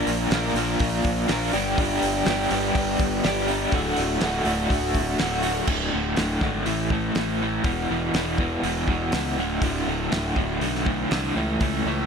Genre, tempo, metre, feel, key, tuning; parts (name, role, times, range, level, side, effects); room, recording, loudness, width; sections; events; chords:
classic rock; 122 BPM; 4/4; straight; A4 = 440 Hz
crunchy overdriven guitar; riff; 0.0-12.1 s; D2 to Bb4; -23 LUFS; equal; tremolo
fuzz fingered electric bass; bass; 0.0-12.1 s; D1 to C#2; -29 LUFS; equal; overdrive
damped 70s drum kit; drums; 0.1-11.7 s; crash cymbal, hi-hat, kick drum, snare drum; -28 LUFS; equal
light reverb; -21 LUFS; side -6 dB against mid
0.0-5.7 A section; 5.7-12.1 B section
0.0 Bb; 1.5 G; 3.7 D; 5.7 D5; 6.7 A5; 7.7 E5; 9.4 D5; 11.4 A/C#